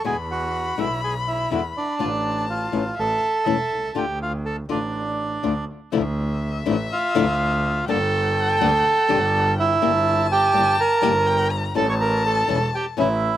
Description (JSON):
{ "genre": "tango", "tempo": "123 BPM", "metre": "4/4", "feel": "rubato", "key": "unclear", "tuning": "A4 = 440 Hz", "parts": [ { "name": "bandoneon", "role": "melody", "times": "0.0-13.4 s", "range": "D4 to C#6", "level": "-21 LUFS", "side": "right 2 dB", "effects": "none" }, { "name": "dark violin", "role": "second line", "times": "0.0-13.4 s", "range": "E5 to B5", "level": "-28 LUFS", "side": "left 5 dB", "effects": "slapback echo" }, { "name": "flamenco guitar", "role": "accompaniment", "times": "0.0-13.1 s", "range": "B2 to G4", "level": "-24 LUFS", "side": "left 8 dB", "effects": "none" }, { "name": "bright double bass", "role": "bass", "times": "0.0-13.4 s", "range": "E1 to E2", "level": "-26 LUFS", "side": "right 1 dB", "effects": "none" } ], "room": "little or no reverb", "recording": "recorded outdoors, with no room sound", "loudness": "-19 LUFS", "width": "side -12 dB against mid", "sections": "0.0-5.9 A section; 5.9-13.4 A section", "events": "none", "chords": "0.0 E7; 2.0 Dm/A; 3.0 A5; 3.9 Dm; 5.9 Dmadd9; 7.9 Gm; 9.8 Edim/G; 11.8 A7" }